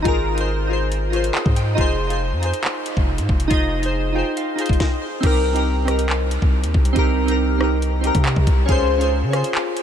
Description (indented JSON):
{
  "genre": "hip hop, drill",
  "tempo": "139 BPM",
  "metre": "4/4",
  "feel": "half-time",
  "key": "C phrygian",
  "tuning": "A4 = 440 Hz",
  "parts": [
    { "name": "glassy digital keys", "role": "accompaniment", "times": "0.0-9.8 s", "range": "C4 to G5", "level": "-21 LUFS", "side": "equal", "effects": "chorus, phaser" },
    { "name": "long sustained 808-style bass", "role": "bass", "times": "0.0-9.4 s", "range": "F1 to Db3", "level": "-21 LUFS", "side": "equal", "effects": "none" },
    { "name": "drill drum kit", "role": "drums", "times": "0.1-9.8 s", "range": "crash cymbal, handclaps, hi-hat, kick drum, rim click, snare drum", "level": "-22 LUFS", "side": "equal", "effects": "vintage 12-bit sampler grit" }
  ],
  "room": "light reverb",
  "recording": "none",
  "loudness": "-17 LUFS",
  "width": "side -9 dB against mid",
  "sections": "0.0-5.2 A section; 5.2-9.8 B section",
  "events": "none",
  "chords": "0.0 Ab6; 1.8 Fm7; 5.2 Cm7; 8.7 Dbmaj7",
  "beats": "| 0.05 0.48 0.92 1.35 | 1.78 2.21 2.64 3.08 | 3.51 3.94 4.37 4.80 | 5.23 5.66 6.10 6.53 | 6.96 7.39 7.82 8.25 | 8.69 9.12 9.55"
}